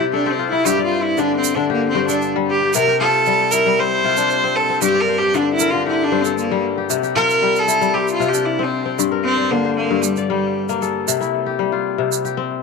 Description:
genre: west african traditional, West African string and xylophone music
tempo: 115 BPM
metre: 4/4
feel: straight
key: G dorian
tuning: A4 = 437 Hz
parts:
  - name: bright cello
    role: melody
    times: 0.0-10.8 s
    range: G3 to C5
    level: -18 LUFS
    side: right 3 dB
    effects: tape echo
  - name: kora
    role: arpeggios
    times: 0.0-12.6 s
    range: G2 to G5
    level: -19 LUFS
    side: left 10 dB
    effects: tape echo
  - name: egg shaker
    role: percussion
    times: 0.7-12.3 s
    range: none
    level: -24 LUFS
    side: right 18 dB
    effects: none
room: moderate spring reverb, RT60 1.4 s, small room ambience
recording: 1960s-style stereo with parts hard left and right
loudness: -15 LUFS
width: side -4 dB against mid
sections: 0.0-9.0 A section; 9.0-12.6 B section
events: kora fill 0.0-0.7; cello solo 0.0-9.0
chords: 0.0 C5; 0.7 G5; 2.7 C; 4.8 Gm; 6.9 C; 9.0 Gm; 11.1 C

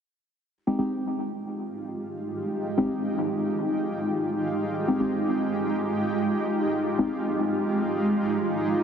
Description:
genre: techno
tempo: free time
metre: none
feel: none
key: F minor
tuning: A4 = 439 Hz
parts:
  - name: granular cloud pad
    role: sustained chords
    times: 1.5-8.8 s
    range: Ab3 to G4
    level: -26 LUFS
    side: right 1 dB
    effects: built-in reverb, vintage 12-bit sampler grit
  - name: deep mellow chord stab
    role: stabs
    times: 0.7-7.1 s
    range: Ab3 to G4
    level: -28 LUFS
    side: left 1 dB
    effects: chorus, phaser, dub echo
room: wet huge ambient reverb, RT60 4.4 s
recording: dense, heavily limited modern master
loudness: -24 LUFS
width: side -7 dB against mid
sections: 0.5-8.8 A section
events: none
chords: 0.5 Fm9

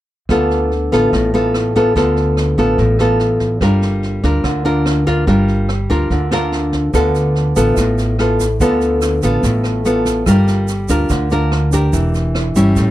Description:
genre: bossa nova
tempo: 144 BPM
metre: 4/4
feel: straight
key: D minor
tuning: A4 = 440 Hz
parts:
  - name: nylon-string guitar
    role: accompaniment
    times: 0.3-12.9 s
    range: A2 to Bb4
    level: -14 LUFS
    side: left 1 dB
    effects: none
  - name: upright bass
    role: bass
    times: 0.3-12.9 s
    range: E1 to D2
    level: -18 LUFS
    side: equal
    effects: none
  - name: jazz brush drum kit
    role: drums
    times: 0.3-12.9 s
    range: kick drum, rim click, snare drum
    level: -24 LUFS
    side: right 1 dB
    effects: none
  - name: egg shaker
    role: percussion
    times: 6.9-12.9 s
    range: none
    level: -31 LUFS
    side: right 27 dB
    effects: none
room: little or no reverb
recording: none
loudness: -13 LUFS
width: side -14 dB against mid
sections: 0.3-12.9 A section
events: none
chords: 0.3 Dm6; 3.6 Gm7; 6.9 Dm6; 10.3 Gm7; 11.9 Em7b5

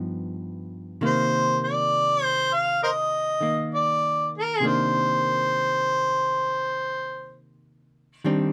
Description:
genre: jazz ballad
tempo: 67 BPM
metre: 4/4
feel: swing 67% on 8ths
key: C minor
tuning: A4 = 440 Hz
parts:
  - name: archtop guitar, miked and amplified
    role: accompaniment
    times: 0.0-8.5 s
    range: G2 to Eb4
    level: -31 LUFS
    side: equal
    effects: none
  - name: mellow harmonica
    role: melody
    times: 1.1-7.4 s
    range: Bb4 to F5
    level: -24 LUFS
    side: equal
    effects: none
room: light reverb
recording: none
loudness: -24 LUFS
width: mono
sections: 0.0-8.2 A section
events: none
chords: 0.0 G7b13; 1.0 Cm9

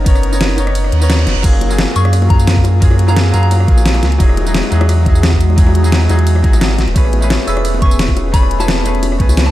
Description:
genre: liquid drum and bass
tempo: 174 BPM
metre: 4/4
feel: swing 53% on 16ths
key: F# major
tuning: A4 = 440 Hz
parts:
  - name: bright grand piano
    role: accompaniment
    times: 0.0-9.5 s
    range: F#3 to C#5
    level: -21 LUFS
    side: equal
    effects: digital delay
  - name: lush unison pad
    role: sustained chords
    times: 0.0-9.5 s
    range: G#3 to D#5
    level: -22 LUFS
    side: equal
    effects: chorus, sidechain pumping
  - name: sub bass with octave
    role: bass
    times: 0.0-9.5 s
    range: E1 to F#2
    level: -13 LUFS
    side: equal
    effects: none
  - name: electronic kick drum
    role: drums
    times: 0.1-9.3 s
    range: none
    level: -12 LUFS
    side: equal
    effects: overdrive
  - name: pop drum kit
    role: drums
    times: 0.1-9.5 s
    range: crash cymbal, hi-hat, ride cymbal, rim click, snare drum, tambourine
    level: -19 LUFS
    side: left 1 dB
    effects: overdrive
  - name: reverse cymbal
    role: sound effects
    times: 0.9-1.4 s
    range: none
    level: -26 LUFS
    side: right 7 dB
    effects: none
  - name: bongos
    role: percussion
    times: 1.6-9.5 s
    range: none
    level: -27 LUFS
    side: left 5 dB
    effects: none
  - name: soft synth bell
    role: melody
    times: 2.0-3.5, 7.5-9.5 s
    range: A5 to E6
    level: -23 LUFS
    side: left 2 dB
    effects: chorus, phaser, dub echo
room: digital ambience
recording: dark, warm production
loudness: -10 LUFS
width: side -15 dB against mid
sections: 0.0-9.5 A section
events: kick drops out 0.8-1.4; reverse cymbal 0.9-1.4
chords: 0.0 Bmaj9; 1.4 F#maj9; 4.2 Emaj9; 6.8 Amaj9

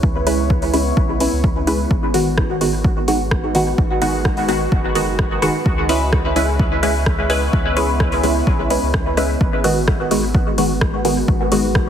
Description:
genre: dub techno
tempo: 128 BPM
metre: 4/4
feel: straight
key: G# minor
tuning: A4 = 441 Hz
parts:
  - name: deep dark ambient pad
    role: sustained chords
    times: 0.0-11.9 s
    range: G#3 to C#5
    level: -27 LUFS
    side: equal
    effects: chorus, built-in reverb, sidechain pumping
  - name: pure sine sub bass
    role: bass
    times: 0.0-11.9 s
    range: F#1 to C#2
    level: -24 LUFS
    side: equal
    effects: sidechain pumping
  - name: electronic kick drum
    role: drums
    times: 0.0-11.8 s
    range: none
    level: -18 LUFS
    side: equal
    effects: overdrive
  - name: filtered dub chord stab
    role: stabs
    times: 0.3-11.7 s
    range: D#3 to B4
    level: -18 LUFS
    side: equal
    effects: chorus, phaser, sidechain pumping, dub echo
  - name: deep house drum kit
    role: drums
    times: 0.3-11.8 s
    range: hi-hat, rim click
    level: -26 LUFS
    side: equal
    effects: overdrive, dub echo
  - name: bubbling stepped-filter texture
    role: texture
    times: 10.0-11.9 s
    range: B3 to B4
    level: -31 LUFS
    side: left 3 dB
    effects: none
room: light reverb, digital ambience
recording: heavily compressed radio sound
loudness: -15 LUFS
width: side -9 dB against mid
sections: 0.0-9.4 A section; 9.4-11.9 A section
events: none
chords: 0.0 C#m7; 1.9 G#m7; 5.7 C#m7; 9.4 G#m7

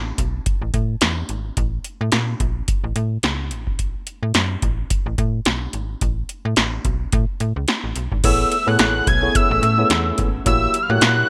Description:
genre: early-eighties boogie funk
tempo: 108 BPM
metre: 4/4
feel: swing 56% on 16ths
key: A major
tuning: A4 = 442 Hz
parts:
  - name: slap-like FM bass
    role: bass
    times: 0.0-11.2 s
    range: G#1 to Bb2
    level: -25 LUFS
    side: equal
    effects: none
  - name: electro analog drum machine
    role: drums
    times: 0.2-11.2 s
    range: crash cymbal, hi-hat, kick drum, snare drum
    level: -23 LUFS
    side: equal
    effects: none
  - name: fat analog lead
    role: melody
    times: 8.2-11.3 s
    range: E6 to G#6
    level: -21 LUFS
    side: equal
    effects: none
  - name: tine electric piano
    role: accompaniment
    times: 8.2-11.3 s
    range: A#3 to C#5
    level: -26 LUFS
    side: equal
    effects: none
  - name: chorused pulse-width pad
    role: sustained chords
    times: 8.2-11.3 s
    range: F#3 to E4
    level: -32 LUFS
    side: equal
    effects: none
room: light reverb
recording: bright 1980s-style digital production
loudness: -20 LUFS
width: mono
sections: 0.0-8.2 A section; 8.2-11.3 B section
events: none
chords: 0.0 Asus2; 1.6 A; 3.5 N.C.; 8.2 Amaj9; 10.5 F#7b9/A

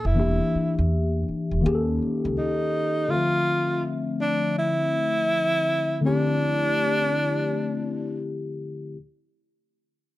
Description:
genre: R&B, neo-soul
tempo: 82 BPM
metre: 4/4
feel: swing 63% on 16ths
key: D minor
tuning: A4 = 440 Hz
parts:
  - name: breathy tenor saxophone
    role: melody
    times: 0.0-8.2 s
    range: D4 to F4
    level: -24 LUFS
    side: right 1 dB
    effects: none
  - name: tine electric piano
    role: accompaniment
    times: 0.0-9.0 s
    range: Bb2 to A5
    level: -25 LUFS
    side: left 3 dB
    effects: phaser
  - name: upright bass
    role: bass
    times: 0.0-2.4 s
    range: E1 to E2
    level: -24 LUFS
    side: equal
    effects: none
room: light reverb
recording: dark, warm production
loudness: -22 LUFS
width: side -16 dB against mid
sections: 0.0-9.0 A section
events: none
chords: 0.2 Em7b5; 1.6 Eb7#11; 3.1 Dm9

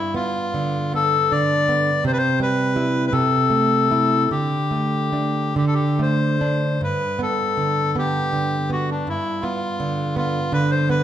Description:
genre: romantic duo for bandoneon and classical guitar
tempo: 45-57 BPM (dotted quarters)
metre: 6/8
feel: rubato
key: G major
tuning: A4 = 440 Hz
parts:
  - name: bandoneon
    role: melody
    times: 0.0-11.0 s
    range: D4 to D5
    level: -21 LUFS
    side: left 3 dB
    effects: none
  - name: nylon-string guitar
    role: accompaniment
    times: 0.0-11.0 s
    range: G2 to E4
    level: -21 LUFS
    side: right 2 dB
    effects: none
room: wet recital hall reverb, RT60 1.4 s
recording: recorded in a church or concert hall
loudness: -18 LUFS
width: side -10 dB against mid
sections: 0.0-11.0 A section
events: none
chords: 0.0 G; 2.0 C; 3.1 Am/C; 4.3 D5; 6.8 G

